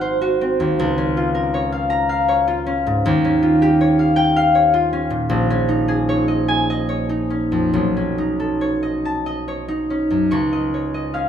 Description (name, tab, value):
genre	classical, solo harp piece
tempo	68-82 BPM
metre	3/4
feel	rubato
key	Db lydian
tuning	A4 = 440 Hz
part	concert harp	solo	0.0-11.3 s	Ab1 to F6	-16 LUFS	equal	none
room	wet recital hall reverb, RT60 1.5 s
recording	minimal, uncompressed stereo recording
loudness	-16 LUFS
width	side -9 dB against mid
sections	0.0-10.3 A section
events	none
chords	0.0 Ab6; 0.8 Db6; 3.0 Eb9; 5.3 Bbm7; 7.7 Cb9; 10.3 Dbadd9